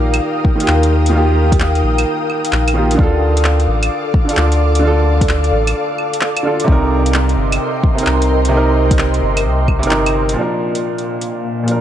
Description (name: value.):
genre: future garage.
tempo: 130 BPM.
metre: 4/4.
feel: swing 66% on 16ths.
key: C dorian.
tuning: A4 = 440 Hz.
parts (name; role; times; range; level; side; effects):
bright upright piano; accompaniment; 0.0-11.8 s; Bb2 to Bb4; -17 LUFS; right 2 dB; sidechain pumping, tape echo.
ethereal airy pad; sustained chords; 0.0-11.8 s; Bb2 to Eb6; -20 LUFS; left 2 dB; ensemble chorus, built-in reverb, sidechain pumping.
soft dub sub bass; bass; 0.0-10.4 s; G1 to Eb2; -15 LUFS; equal; sidechain pumping.
deep house drum kit; drums; 0.1-11.7 s; claves, handclaps, hi-hat; -21 LUFS; right 1 dB; vintage 12-bit sampler grit.
electronic kick drum; drums; 0.4-9.8 s; none; -14 LUFS; equal; vintage 12-bit sampler grit.
room: light reverb, digital ambience.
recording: none.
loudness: -12 LUFS.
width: side -11 dB against mid.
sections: 0.0-10.4 A section; 10.4-11.8 B section.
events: filter sweep on ambient pad 10.4-11.8.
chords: 0.0 Ebadd9; 3.0 Dm; 6.7 Cm7; 10.4 Bb.